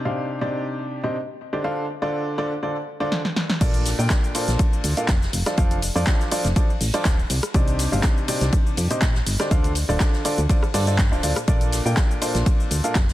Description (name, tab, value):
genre	piano house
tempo	122 BPM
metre	4/4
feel	swing 53% on 16ths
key	Bb major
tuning	A4 = 440 Hz
part	bright upright piano	riff	0.0-13.0 s	Bb2 to G5	-25 LUFS	equal	sidechain pumping, ping-pong delay
part	punchy analog drum machine	drums	3.1-13.1 s	crash cymbal, handclaps, hi-hat, rim click, shaker, snare drum	-27 LUFS	equal	overdrive, small room ambience
part	solid FM bass	bass	3.6-13.1 s	D1 to Bb2	-23 LUFS	equal	sidechain pumping
part	electronic kick drum	drums	3.6-13.1 s	none	-20 LUFS	equal	overdrive, small room ambience
part	vintage drum kit	drums	3.6-13.1 s	hi-hat, ride cymbal, snare drum	-35 LUFS	left 2 dB	high-pass filter on cymbals, small room ambience, high-pass filter on hats, high-pass filter on snare, high-pass filter on room
room	little or no reverb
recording	dense, heavily limited modern master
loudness	-19 LUFS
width	side -15 dB against mid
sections	0.0-3.6 A section; 3.6-13.1 B section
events	drum fill 3.1-3.6; drop 3.6-13.1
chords	0.0 Cmadd9; 1.6 Dm7; 3.6 Bbmaj7; 5.3 F6; 7.3 Cmadd9; 9.5 Dm7; 11.5 Bbmaj7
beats	0.17 0.66 1.15 | 1.64 2.13 2.63 3.12 | 3.61 4.10 4.59 5.09 | 5.58 6.07 6.56 7.05 | 7.54 8.04 8.53 9.02 | 9.51 10.00 10.49 10.99 | 11.48 11.97 12.46 12.96